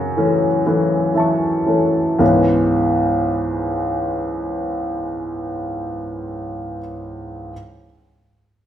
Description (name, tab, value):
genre	neoclassical minimalist piano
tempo	38 BPM (dotted quarters)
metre	6/8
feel	rubato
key	C# minor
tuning	A4 = 440 Hz
part	clear baby grand piano	solo	0.0-7.5 s	C#2 to C#6	-17 LUFS	equal	none
room	wet stone room reverb, RT60 1.2 s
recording	band playing live in one room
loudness	-17 LUFS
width	side -10 dB against mid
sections	0.0-2.2 A section; 2.2-5.3 B section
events	slowing down 0.0-2.2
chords	0.0 F#m7; 2.2 C#m7